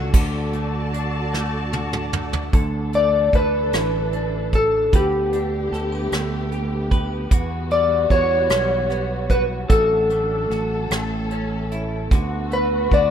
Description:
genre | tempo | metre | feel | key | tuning
six-eight pop ballad | 50 BPM (dotted quarters) | 6/8 | straight | D major | A4 = 440 Hz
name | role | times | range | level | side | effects
direct-recorded clean electric guitar | accompaniment | 0.0-13.1 s | A2 to B4 | -30 LUFS | right 1 dB | double-tracked left and right
dark studio string section | sustained chords | 0.0-13.1 s | D3 to A5 | -30 LUFS | equal | none
fingered electric bass | bass | 0.0-13.1 s | A1 to E2 | -26 LUFS | right 1 dB | none
soft brush drum kit | drums | 0.1-13.1 s | crash cymbal, hi-hat, kick drum, rim click, snare drum, toms | -19 LUFS | right 1 dB | none
electric slide guitar | melody | 3.0-13.1 s | G4 to D5 | -20 LUFS | left 2 dB | ping-pong delay
room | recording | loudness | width
small room reverb | rough home demo mix | -18 LUFS | side -9 dB against mid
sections
0.1-2.5 A section; 2.5-13.1 B section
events
drum fill 1.3-2.5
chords
0.1 D; 2.5 Dsus2; 4.9 Gadd9/D; 7.3 Emadd9; 9.7 D/A; 10.9 A; 12.1 D6

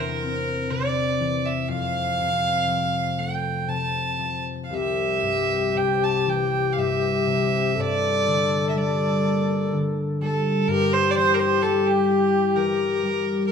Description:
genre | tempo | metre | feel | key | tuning
celtic folk, Celtic slow air | 60 BPM | 3/4 | uneven beats, rubato | G dorian | A4 = 440 Hz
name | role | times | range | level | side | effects
rich fiddle | melody | 0.0-13.5 s | G4 to A5 | -24 LUFS | right 3 dB | none
concert harp | accompaniment | 0.0-13.5 s | C2 to E4 | -26 LUFS | left 1 dB | none
baroque flute | second line | 4.7-13.5 s | G4 to A4 | -24 LUFS | left 6 dB | none
room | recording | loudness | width
moderate recital hall reverb, RT60 1.6 s | minimal, uncompressed stereo recording | -20 LUFS | side -7 dB against mid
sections
0.0-13.5 A section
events
none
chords
0.0 C9/E; 1.7 F; 4.7 C; 7.8 Gmadd9; 10.7 Gm6

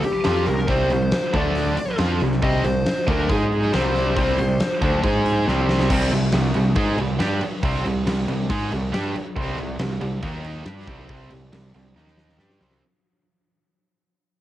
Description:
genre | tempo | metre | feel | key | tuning
hard rock | 138 BPM | 4/4 | straight | C minor | A4 = 440 Hz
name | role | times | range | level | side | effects
dark smooth lead guitar | melody | 0.0-5.4 s | G4 to Eb5 | -25 LUFS | left 1 dB | overdrive, cassette tape, analog delay
distorted electric guitar | riff | 0.0-12.8 s | C3 to Ab4 | -32 LUFS | left 8 dB | overdrive, cassette tape
overdriven electric guitar | riff | 0.0-5.9, 9.4-12.8 s | C3 to Ab4 | -30 LUFS | left 1 dB | none
tight distorted guitar | riff | 0.0-12.8 s | C3 to Ab4 | -26 LUFS | right 5 dB | distortion, cassette tape
fuzz picked electric bass | bass | 0.0-12.8 s | C2 to Ab2 | -24 LUFS | equal | overdrive
huge arena drum kit | drums | 0.0-12.8 s | crash cymbal, hi-hat, kick drum, snare drum | -26 LUFS | equal | cassette tape
room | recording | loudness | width
light reverb | home recording on cassette | -19 LUFS | side -13 dB against mid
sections
0.0-5.9 A section; 5.9-12.8 B section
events
drum fill 5.5-5.9, 12.0-12.8; fade-out 5.9-12.8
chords
0.0 C5; 1.3 D5; 1.8 C5; 3.3 Ab5; 3.7 C5; 5.0 Ab5; 5.5 C5; 5.9 Cm; 10.2 Eb5; 10.7 C5; 12.0 Eb5; 12.4 C5

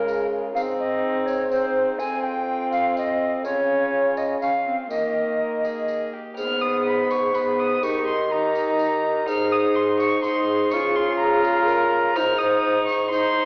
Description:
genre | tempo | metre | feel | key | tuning
classical, renaissance-style consort dance | 124 BPM | 3/4 | straight | unclear | A4 = 440 Hz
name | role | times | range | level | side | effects
mellow tenor recorder | melody | 0.0-13.5 s | G4 to Ab5 | -27 LUFS | equal | none
warm violin | second line | 0.0-13.5 s | Eb4 to F6 | -29 LUFS | equal | none
warm viola | accompaniment | 0.0-13.5 s | Ab3 to F4 | -30 LUFS | equal | none
warm bassoon | bass | 0.0-13.3 s | F2 to Eb3 | -28 LUFS | equal | none
tambourine | percussion | 0.1-13.3 s | none | -54 LUFS | equal | none
room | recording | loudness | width
wet recital hall reverb, RT60 1.7 s | recorded in a church or concert hall, vinyl crackle, AM radio sound | -22 LUFS | mono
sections
0.0-6.4 A section; 6.4-13.5 A section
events
none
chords
0.0 Db; 0.6 Ab; 2.0 F5; 3.4 Db; 4.9 Eb; 6.4 Abm; 7.8 Eb; 9.3 Ab; 10.7 Db; 12.2 Ab

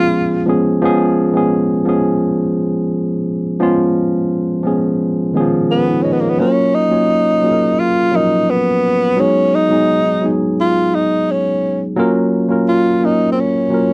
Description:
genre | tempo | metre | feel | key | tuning
soul | 86 BPM | 4/4 | straight | F# major | A4 = 439 Hz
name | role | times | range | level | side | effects
breathy tenor saxophone | melody | 0.0-0.5, 5.7-13.9 s | A#3 to E#4 | -17 LUFS | equal | none
barky tine electric piano | accompaniment | 0.0-13.9 s | D#3 to D#5 | -17 LUFS | equal | none
room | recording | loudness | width
little or no reverb | dry, close 1970s-style studio recording | -15 LUFS | mono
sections
0.8-6.4 A section; 6.4-13.9 B section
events
none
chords
0.0 C#7; 6.4 F#maj7; 9.2 G#m7; 12.0 F#maj7

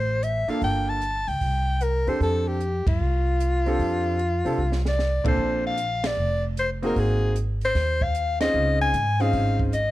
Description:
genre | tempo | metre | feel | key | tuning
jazz, small-group swing and bop | 152 BPM | 4/4 | swing 66% on 8ths | F major | A4 = 440 Hz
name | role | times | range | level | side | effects
breathy soprano saxophone | melody | 0.0-9.9 s | F4 to A5 | -25 LUFS | left 2 dB | none
upright bass | bass | 0.0-9.9 s | F1 to C3 | -25 LUFS | equal | none
compact cocktail drum kit | drums | 0.2-9.9 s | hi-hat, kick drum, ride cymbal, snare drum | -29 LUFS | right 1 dB | none
warm baby grand piano | accompaniment | 0.5-9.7 s | Bb2 to A4 | -27 LUFS | right 2 dB | none
room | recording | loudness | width
light reverb | close, detailed microphones | -21 LUFS | side -16 dB against mid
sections
0.0-5.4 A section; 5.4-9.9 B section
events
band accent 2.8, 5.2, 6.0, 8.3; drum fill 4.6-5.0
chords
0.0 Dm7; 0.6 Gm9; 1.4 C69; 2.2 F69; 5.4 Bbadd9; 7.0 Ab7; 8.5 Dbmaj9

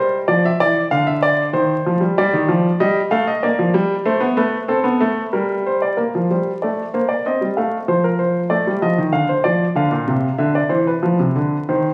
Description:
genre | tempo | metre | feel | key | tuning
classical, baroque-style two-part invention for grand piano | 95 BPM | 3/4 | straight | unclear | A4 = 441 Hz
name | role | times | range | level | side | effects
warm grand piano | solo | 0.0-11.9 s | Bb2 to F5 | -18 LUFS | equal | none
room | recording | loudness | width
moderate recital hall reverb, RT60 1.9 s | recorded on a phone in the room, studio reverb, vinyl crackle | -18 LUFS | mono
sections
0.0-6.0 A section; 6.0-11.9 B section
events
none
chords
0.3 Dmadd9; 1.5 Cm/Eb; 2.2 G5; 3.4 Gm; 4.1 Amadd9; 5.3 Gm; 7.3 Cm; 7.9 F; 9.1 Dm7; 9.8 Bbadd9; 10.4 Cmaj9/D; 11.0 Bdim

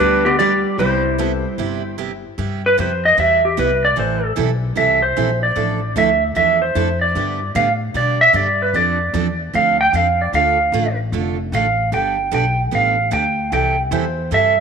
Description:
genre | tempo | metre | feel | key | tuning
country, western swing | 151 BPM | 4/4 | swing 67% on 8ths | C major | A4 = 440 Hz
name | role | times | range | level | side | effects
clean lap steel guitar | melody | 0.0-14.6 s | B3 to G5 | -16 LUFS | right 1 dB | none
archtop guitar, miked and amplified | second line | 0.0-1.9 s | D3 to G3 | -24 LUFS | right 9 dB | none
dark upright piano | accompaniment | 0.0-1.4 s | G3 to A4 | -27 LUFS | left 15 dB | none
picked steel-string acoustic guitar | accompaniment | 0.0-14.5 s | C3 to A4 | -24 LUFS | right 9 dB | none
upright bass | bass | 0.0-14.6 s | F1 to B2 | -23 LUFS | left 2 dB | none
room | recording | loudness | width
moderate plate reverb, RT60 2.8 s | 1960s-style stereo with parts hard left and right | -15 LUFS | side -6 dB against mid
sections
0.0-2.4 A section; 2.4-14.6 B section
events
electric slide guitar solo 2.4-14.6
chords
0.0 G; 0.8 Cmaj7; 4.0 Am7; 5.6 Dmadd9/A; 7.2 G; 8.7 F6; 10.3 Dm; 11.9 Gadd9; 13.5 C6

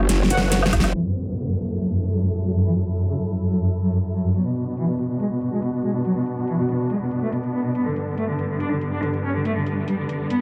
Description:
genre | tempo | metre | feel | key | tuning
heavy wobble dubstep | 141 BPM | 4/4 | half-time | F# minor | A4 = 441 Hz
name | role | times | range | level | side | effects
warm symphonic string section | sustained chords | 0.0-10.4 s | F#2 to C#5 | -30 LUFS | equal | sidechain pumping, low-pass filter
growl bass | bass | 0.0-0.9 s | F#1 | -22 LUFS | equal | chorus, overdrive
dubstep drum kit | drums | 0.1-10.4 s | crash cymbal, hi-hat, snare drum, woodblock | -25 LUFS | equal | none
warm brass ensemble | stabs | 0.3-0.6 s | F#4 to F#5 | -29 LUFS | equal | digital delay
formant-sweep wobble bass | bass | 0.3-0.7 s | F#1 | -24 LUFS | equal | chorus, overdrive
electronic kick drum | drums | 0.7-0.8 s | none | -26 LUFS | equal | none
warm cello | melody | 0.9-10.4 s | F#2 to D4 | -24 LUFS | equal | none
downlifter | sound effects | 1.0-4.3 s | none | -36 LUFS | equal | none
room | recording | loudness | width
light reverb | low-pass filter | -23 LUFS | mono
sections
0.9-10.4 A section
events
drum fill 0.1-0.9; band accent 0.8; filter sweep on string section 0.9-10.4; filter sweep 0.9-10.4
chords
0.0 F#sus2; 0.9 F#m7; 4.3 Bm; 7.8 G

